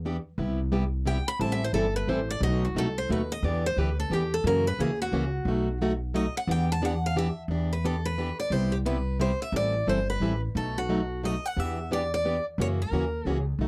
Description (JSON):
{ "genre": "acoustic string swing (jazz manouche)", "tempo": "177 BPM", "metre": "3/4", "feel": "swing 61% on 8ths", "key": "E minor", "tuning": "A4 = 440 Hz", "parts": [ { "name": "upright bass", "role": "bass", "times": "0.0-13.7 s", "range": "G1 to F#2", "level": "-32 LUFS", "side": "equal", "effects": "none" }, { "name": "picked plugged-in steel-string acoustic guitar", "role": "accompaniment", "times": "0.1-13.7 s", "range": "B2 to A4", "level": "-32 LUFS", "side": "equal", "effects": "none" }, { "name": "picked steel-string acoustic guitar", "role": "melody", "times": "1.1-13.4 s", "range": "F#4 to B5", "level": "-33 LUFS", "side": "equal", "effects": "none" } ], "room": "light reverb", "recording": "dry, close 1970s-style studio recording", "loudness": "-28 LUFS", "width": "mono", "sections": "0.0-7.5 A section; 7.5-13.7 B section", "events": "steel-string acoustic guitar solo 0.0-7.5", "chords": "0.4 Cmaj7; 1.4 Am7; 2.4 B7; 3.4 Em7; 4.4 F#7; 5.5 B7; 6.5 Em7; 8.5 Cmaj7; 9.5 Am7; 10.6 B7; 11.6 Em7; 12.6 F#7" }